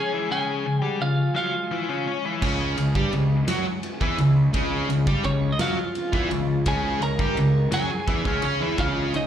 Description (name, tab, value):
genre	quiet-loud alternative rock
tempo	56 BPM (dotted quarters)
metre	6/8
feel	straight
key	Db major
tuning	A4 = 441 Hz
part	twelve-string electric guitar	melody	0.0-9.3 s	Db4 to Bb5	-27 LUFS	right 1 dB	slapback echo
part	rich studio string section	sustained chords	0.0-9.3 s	F3 to Db4	-38 LUFS	right 3 dB	none
part	biting overdriven guitar	riff	0.0-9.3 s	Db3 to Db5	-25 LUFS	left 4 dB	slapback echo
part	fuzz guitar	riff	2.4-9.3 s	Db3 to Db5	-28 LUFS	right 6 dB	distortion, slapback echo
part	sludgy distorted guitar	riff	2.4-9.3 s	Db3 to Db5	-30 LUFS	right 1 dB	overdrive, slapback echo
part	fuzz picked electric bass	bass	2.4-9.3 s	Db2 to Db3	-28 LUFS	right 1 dB	overdrive
part	loose indie drum kit	drums	2.4-9.3 s	crash cymbal, kick drum, ride cymbal, snare drum	-29 LUFS	equal	none
room	light reverb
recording	live gig heard through the venue's PA, club reverb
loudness	-21 LUFS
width	side -9 dB against mid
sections	0.0-9.3 A section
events	none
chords	0.0 Db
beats	| 0.30 1.36 | 2.42 3.48 | 4.54 5.60 | 6.67 7.73 | 8.79